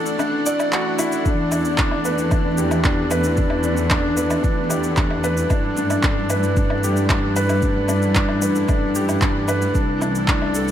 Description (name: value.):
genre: piano and strings electronica.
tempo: 113 BPM.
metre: 4/4.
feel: straight.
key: E minor.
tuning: A4 = 440 Hz.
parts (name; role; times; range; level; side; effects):
lush unison pad; sustained chords; 0.0-10.7 s; E3 to F#5; -26 LUFS; right 1 dB; chorus.
felt-muted upright piano; riff; 0.0-10.7 s; D4 to D5; -22 LUFS; left 1 dB; digital delay.
electronic shaker, woodblock and handclaps; drums; 0.1-10.7 s; none; -26 LUFS; equal; overdrive.
dark symphonic cello section; bass; 1.3-10.7 s; C2 to G2; -23 LUFS; equal; sidechain pumping.
electronic kick drum; drums; 1.3-10.4 s; none; -21 LUFS; equal; none.
room: moderate lush hall reverb, RT60 1.9 s.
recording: none.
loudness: -17 LUFS.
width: side -10 dB against mid.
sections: 0.0-10.7 A section.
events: break 0.0-1.3.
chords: 0.0 Dadd9; 1.3 Em7; 5.5 Gmaj7; 9.8 C69.